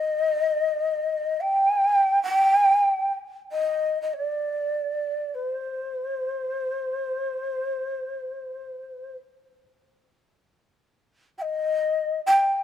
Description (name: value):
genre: japanese traditional, Japanese chamber music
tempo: free time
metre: none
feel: none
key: C minor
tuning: A4 = 440 Hz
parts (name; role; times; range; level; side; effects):
- breathy mellow shakuhachi; solo; 0.0-12.6 s; C5 to G5; -22 LUFS; left 1 dB; none
room: light reverb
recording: close, detailed microphones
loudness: -22 LUFS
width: side -10 dB against mid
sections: 0.0-12.6 A section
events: none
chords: none